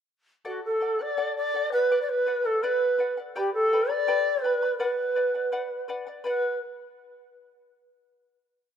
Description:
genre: andean folk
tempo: 83 BPM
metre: 2/4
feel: straight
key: B minor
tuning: A4 = 440 Hz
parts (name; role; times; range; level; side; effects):
- charango; accompaniment; 0.4-6.5 s; G4 to B5; -34 LUFS; left 2 dB; none
- bright reedy long shakuhachi; melody; 0.5-6.6 s; F#4 to D5; -24 LUFS; equal; slapback echo
room: moderate lush hall reverb, RT60 2.6 s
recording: rough home demo mix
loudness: -24 LUFS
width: side -8 dB against mid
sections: 0.5-6.3 A section; 6.3-7.7 final chord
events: none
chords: 0.5 D; 1.9 Bm; 3.4 G; 4.8 Bm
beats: | 0.45 1.18 | 1.90 2.63 | 3.35 4.08 | 4.80 5.53 | 6.25

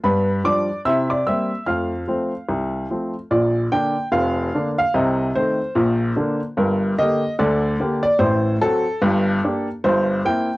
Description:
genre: jazz, stride piano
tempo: 147 BPM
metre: 4/4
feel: swing 58% on 8ths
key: F major, Bb major from 3.3 s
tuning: A4 = 440 Hz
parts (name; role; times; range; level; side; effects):
- clear upright piano; solo; 0.0-10.6 s; F1 to F6; -18 LUFS; equal; cassette tape
room: wet booth ambience, RT60 0.2 s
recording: home recording on cassette, nothing above 11.0 kHz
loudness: -18 LUFS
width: side -19 dB against mid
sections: 0.0-3.3 A section; 3.3-10.6 B section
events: none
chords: 0.0 G7; 0.9 C7; 1.7 F; 3.3 Bb; 5.0 Adim/C; 5.8 Bb; 6.6 Gm; 8.2 F#dim/A; 9.0 Gm; 9.9 C7/G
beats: | 0.04 0.45 0.86 1.27 | 1.68 2.09 2.50 2.91 | 3.31 3.72 4.13 4.54 | 4.95 5.36 5.77 6.18 | 6.58 6.99 7.40 7.81 | 8.22 8.63 9.04 9.44 | 9.85 10.26

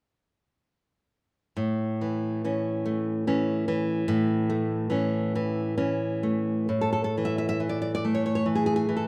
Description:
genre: romantic piece for solo classical guitar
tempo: 61-74 BPM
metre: 3/4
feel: rubato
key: A major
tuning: A4 = 440 Hz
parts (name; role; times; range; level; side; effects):
- nylon-string guitar; solo; 1.6-9.1 s; A2 to E5; -27 LUFS; equal; none
room: moderate recital hall reverb, RT60 1.7 s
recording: none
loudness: -27 LUFS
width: mono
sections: 1.6-6.7 A section; 6.7-9.1 B section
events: none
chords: 1.6 A; 6.7 A5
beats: | 1.56 2.43 3.26 | 4.07 4.90 5.77 | 6.70 7.58 8.45

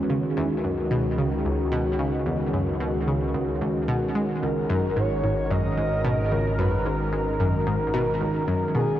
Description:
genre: ambient, sequencer-driven space music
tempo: 111 BPM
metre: 4/4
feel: straight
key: unclear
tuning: A4 = 440 Hz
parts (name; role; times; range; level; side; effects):
- sweeping resonant pad; sustained chords; 0.0-9.0 s; D#3 to B4; -26 LUFS; equal; chorus
- fat analog bass; bass; 0.0-9.0 s; G#1 to C#2; -31 LUFS; equal; none
- analog pluck; riff; 0.1-8.9 s; C#2 to G#3; -26 LUFS; equal; chorus, tape echo
- breathy flute-like synth lead; melody; 4.4-9.0 s; G#4 to D#5; -29 LUFS; equal; tremolo, lush chorus, tape echo
room: wet huge ambient reverb, RT60 7.6 s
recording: worn, warbling old tape, cassette tape, warbly pitch drift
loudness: -22 LUFS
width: side -12 dB against mid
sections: 0.0-9.0 A section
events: none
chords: 0.1 C#7(no3); 4.4 G#7(no3)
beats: | 0.10 0.64 1.18 1.72 | 2.26 2.80 3.35 3.88 | 4.43 4.97 5.51 6.05 | 6.59 7.13 7.67 8.21 | 8.75

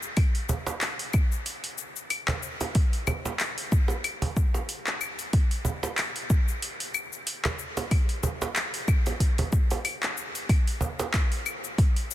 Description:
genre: downtempo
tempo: 93 BPM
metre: 4/4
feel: swing 56% on 16ths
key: none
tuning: none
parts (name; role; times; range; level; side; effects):
- deep house drum kit; drums; 0.0-12.1 s; cabasa, claves, handclaps, hi-hat; -30 LUFS; left 2 dB; overdrive
- electronic kick drum; drums; 0.2-11.9 s; none; -22 LUFS; equal; overdrive
- cajon; percussion; 0.5-11.1 s; none; -33 LUFS; right 2 dB; none
room: light reverb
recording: dense, heavily limited modern master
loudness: -25 LUFS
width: side -14 dB against mid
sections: 0.0-10.5 A section; 10.5-12.1 B section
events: none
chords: none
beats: | 0.17 0.82 1.46 2.11 | 2.75 3.40 4.04 4.69 | 5.33 5.98 6.62 7.27 | 7.91 8.56 9.20 9.85 | 10.49 11.14 11.78

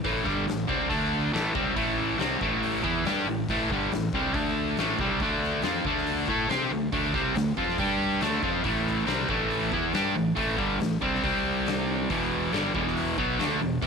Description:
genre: blues rock power trio and southern rock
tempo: 140 BPM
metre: 4/4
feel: straight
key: unclear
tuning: A4 = 440 Hz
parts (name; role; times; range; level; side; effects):
- distorted electric guitar; riff; 0.0-13.9 s; E2 to C5; -25 LUFS; equal; distortion
- fuzz fingered electric bass; bass; 0.0-13.9 s; E1 to C3; -34 LUFS; right 1 dB; overdrive
- oversized low-tuned drum kit; drums; 0.0-13.9 s; hi-hat, kick drum, snare drum; -34 LUFS; left 3 dB; none
room: light reverb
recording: 1960s-style stereo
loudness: -24 LUFS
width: side -5 dB against mid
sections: 0.0-13.9 A section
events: none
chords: 0.0 A5; 0.9 D5; 1.3 A5; 4.3 D5; 4.8 A5; 5.2 D5; 7.8 G5; 8.2 D5; 8.6 A5; 11.2 C5; 12.1 E5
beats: | 0.05 0.48 0.91 1.34 | 1.76 2.19 2.62 3.05 | 3.48 3.91 4.34 4.77 | 5.20 5.63 6.06 6.49 | 6.92 7.35 7.78 8.21 | 8.64 9.07 9.51 9.94 | 10.37 10.80 11.23 11.66 | 12.09 12.52 12.95 13.38 | 13.82

